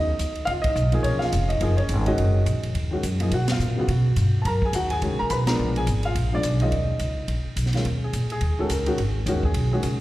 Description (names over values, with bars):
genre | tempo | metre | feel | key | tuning
jazz piano trio | 212 BPM | 4/4 | swing 59% on 8ths | Eb minor | A4 = 441 Hz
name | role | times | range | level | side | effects
warm baby grand piano | melody | 0.0-10.0 s | Db3 to B5 | -26 LUFS | equal | plate reverb, slapback echo
upright bass | bass | 0.0-10.0 s | F1 to B2 | -23 LUFS | equal | none
open jazz drum kit | drums | 0.2-9.9 s | hi-hat, kick drum, ride cymbal, snare drum | -31 LUFS | equal | none
room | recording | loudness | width
light reverb | live gig heard through the venue's PA, recital hall reverb | -21 LUFS | side -16 dB against mid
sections
0.0-7.9 A section; 7.9-10.0 B section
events
band accent 0.6, 3.5, 5.4; grand piano solo 7.9-10.0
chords
0.0 Ebm7; 3.3 Bmaj7; 5.6 Bb7b9; 6.7 Dbsus2; 7.3 Bb5; 7.9 Eb7(no3); 9.0 Abm7